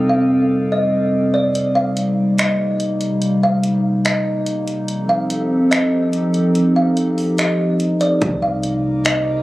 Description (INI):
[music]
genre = hip hop, atmospheric cloud-rap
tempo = 144 BPM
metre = 4/4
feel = half-time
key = C dorian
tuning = A4 = 438 Hz
[part]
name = warbly tape-like pad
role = sustained chords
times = 0.0-9.4 s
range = F2 to A4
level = -17 LUFS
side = equal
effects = chorus, built-in reverb, sidechain pumping, low-pass filter
[part]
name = drifting glass-harmonics texture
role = texture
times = 0.0-1.5, 8.5-9.4 s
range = A4 to D6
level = -37 LUFS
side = equal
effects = chorus, built-in reverb
[part]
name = kalimba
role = melody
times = 0.1-9.4 s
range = D5 to F5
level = -21 LUFS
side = equal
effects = low-pass filter, tape echo
[part]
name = trap drum kit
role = drums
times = 1.6-9.2 s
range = finger snaps, hi-hat, kick drum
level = -22 LUFS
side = equal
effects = none
[part]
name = soft 808-style bass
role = bass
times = 8.2-9.4 s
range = C2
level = -26 LUFS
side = equal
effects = none
[sound]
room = little or no reverb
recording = recorded on a phone in the room, club ambience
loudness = -15 LUFS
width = side -18 dB against mid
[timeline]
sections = 0.0-1.6 A section; 1.6-9.4 B section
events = filter sweep 0.0-1.6; kick muted 1.6-8.2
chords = 0.0 F13; 1.6 Cm7; 4.9 F9; 8.2 Cm9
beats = 0.30 0.72 1.13 | 1.55 1.97 2.38 2.80 | 3.22 3.63 4.05 4.47 | 4.88 5.30 5.72 6.13 | 6.55 6.97 7.38 7.80 | 8.22 8.63 9.05